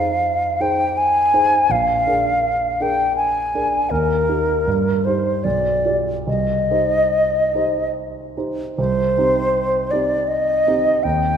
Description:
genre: classical, romantic duo for flute and grand piano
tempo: 69-84 BPM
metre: 3/4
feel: rubato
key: C minor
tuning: A4 = 439 Hz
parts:
  - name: mellow hollow silver concert flute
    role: melody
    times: 0.0-11.4 s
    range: Bb4 to Ab5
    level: -17 LUFS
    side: left 1 dB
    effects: none
  - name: warm concert grand piano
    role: accompaniment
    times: 0.0-11.4 s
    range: Bb1 to D5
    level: -22 LUFS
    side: right 2 dB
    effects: none
room: wet scoring stage reverb, RT60 1.6 s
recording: minimal, uncompressed stereo recording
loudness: -16 LUFS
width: side -8 dB against mid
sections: 0.0-8.8 A section; 8.8-11.4 A section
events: none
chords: 0.0 Fm7; 1.7 Bb7; 3.9 Eb; 4.7 Cm/G; 5.4 G7/B; 6.3 Cm

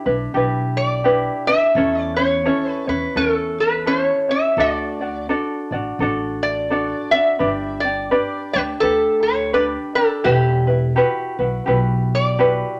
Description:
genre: Hawaiian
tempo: 85 BPM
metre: 4/4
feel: swing 60% on 8ths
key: D major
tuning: A4 = 439 Hz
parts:
  - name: ukulele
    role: accompaniment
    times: 0.0-12.8 s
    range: C#4 to D5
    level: -23 LUFS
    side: equal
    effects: none
  - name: upright bass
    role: bass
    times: 0.1-12.6 s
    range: E1 to E2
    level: -27 LUFS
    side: equal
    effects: none
  - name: metal-body resonator slide guitar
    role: melody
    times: 0.8-12.8 s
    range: G4 to E5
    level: -21 LUFS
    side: equal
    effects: none
room: moderate studio reverb, RT60 0.9 s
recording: none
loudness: -19 LUFS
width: mono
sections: 0.0-12.8 A section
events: none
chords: 0.0 Em7; 1.7 A/E; 4.6 D; 7.4 G; 10.2 Emadd9

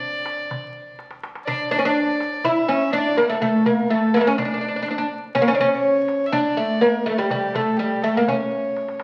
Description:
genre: Arabic maqam ensemble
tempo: 124 BPM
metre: 4/4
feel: straight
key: unclear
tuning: A4 = 442 Hz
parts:
  - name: oud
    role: melody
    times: 0.0-9.0 s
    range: G3 to E4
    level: -22 LUFS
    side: equal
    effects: none
  - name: rich violin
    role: second line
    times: 0.0-9.0 s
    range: G4 to E5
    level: -28 LUFS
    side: equal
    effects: none
  - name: darbuka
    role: percussion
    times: 0.0-9.0 s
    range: none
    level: -38 LUFS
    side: equal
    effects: none
room: moderate large studio reverb, RT60 1.2 s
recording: very old 78 rpm record, vinyl crackle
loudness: -21 LUFS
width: mono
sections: 0.0-1.5 A section; 1.5-9.0 B section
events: drum fill 1.0-1.5, 8.8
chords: none

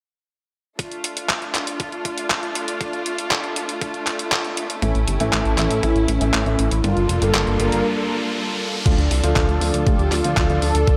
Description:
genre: italo disco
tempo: 119 BPM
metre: 4/4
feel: straight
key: D minor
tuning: A4 = 440 Hz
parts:
  - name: clear studio string section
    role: sustained chords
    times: 0.8-11.0 s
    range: G3 to A4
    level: -29 LUFS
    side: equal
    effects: none
  - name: detuned 8-bit digital drum machine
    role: drums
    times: 0.8-11.0 s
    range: crash cymbal, handclaps, hi-hat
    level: -26 LUFS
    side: equal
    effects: studio reverb, gated reverb
  - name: electronic kick drum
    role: drums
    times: 0.8-11.0 s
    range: none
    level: -23 LUFS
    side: equal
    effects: high-pass filter on kick, studio reverb
  - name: warm concert grand piano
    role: stabs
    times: 4.8-11.0 s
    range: G2 to F4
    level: -27 LUFS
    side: equal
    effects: none
  - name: chorused synth bass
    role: bass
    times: 4.8-11.0 s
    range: F1 to D2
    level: -23 LUFS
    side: equal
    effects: none
  - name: riser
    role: sound effects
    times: 6.8-8.9 s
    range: none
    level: -33 LUFS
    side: equal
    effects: none
  - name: mellow synth brass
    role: melody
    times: 5.1-11.0 s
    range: C#4 to Bb4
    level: -27 LUFS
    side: equal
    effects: chorus, digital delay
room: light reverb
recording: none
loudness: -21 LUFS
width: mono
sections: 0.8-8.9 A section; 8.9-11.0 B section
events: riser 6.8-8.9; break 7.8-8.9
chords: 0.8 Dm; 4.8 A; 6.8 Gm7; 8.9 Dm

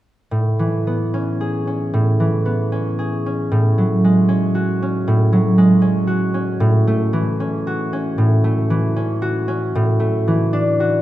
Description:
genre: classical, solo harp piece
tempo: 76 BPM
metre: 4/4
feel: rubato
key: A major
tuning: A4 = 440 Hz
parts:
  - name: concert harp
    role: solo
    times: 0.3-11.0 s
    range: A2 to G#4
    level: -15 LUFS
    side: equal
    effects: none
room: wet recital hall reverb, RT60 1.7 s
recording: none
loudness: -16 LUFS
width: side -14 dB against mid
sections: 0.3-11.0 A section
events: none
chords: 0.3 Amaj9; 3.5 F#madd9/A; 6.6 A6; 9.7 E11/A

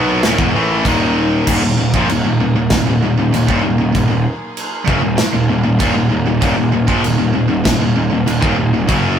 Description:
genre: heavy metal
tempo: 97 BPM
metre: 4/4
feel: straight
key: Eb minor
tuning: A4 = 441 Hz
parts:
  - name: rich chamber string section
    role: sustained chords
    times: 0.0-9.2 s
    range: Gb3 to Bb4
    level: -30 LUFS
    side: left 1 dB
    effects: none
  - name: distorted electric guitar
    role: riff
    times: 0.0-9.2 s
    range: Eb2 to Cb4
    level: -18 LUFS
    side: left 6 dB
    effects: overdrive
  - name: high-gain distorted guitar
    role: riff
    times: 0.0-9.2 s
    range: Eb2 to Cb4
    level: -18 LUFS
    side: right 5 dB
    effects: distortion
  - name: fuzz picked electric bass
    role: bass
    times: 0.0-9.2 s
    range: Eb1 to Cb2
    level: -19 LUFS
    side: equal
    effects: overdrive
  - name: modern studio drum kit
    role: drums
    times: 0.2-9.0 s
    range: china cymbal, crash cymbal, kick drum, snare drum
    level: -19 LUFS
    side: equal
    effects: none
room: light reverb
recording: rough rehearsal-room recording, warm saturation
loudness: -12 LUFS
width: side -8 dB against mid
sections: 0.0-9.2 A section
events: none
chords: 0.0 Ebm

